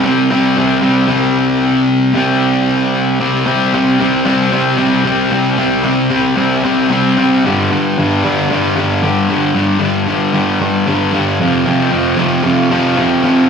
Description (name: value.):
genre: rock.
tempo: 114 BPM.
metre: 4/4.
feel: straight.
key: unclear.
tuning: A4 = 439 Hz.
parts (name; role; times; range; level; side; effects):
fuzz guitar; solo; 0.0-13.5 s; F2 to C4; -11 LUFS; equal; distortion.
room: moderate club ambience, RT60 0.5 s.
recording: live gig heard through the venue's PA, club reverb.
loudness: -11 LUFS.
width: side -6 dB against mid.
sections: 0.0-1.1 A section; 1.1-3.2 B section; 3.2-13.5 C section.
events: none.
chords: 0.0 C5; 7.4 G5; 11.4 F5.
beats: 0.03 0.56 | 1.09 1.62 2.15 2.68 | 3.21 3.74 4.27 4.80 | 5.33 5.85 6.38 6.91 | 7.44 7.97 8.50 9.03 | 9.55 10.08 10.61 11.14 | 11.67 12.20 12.73 13.26.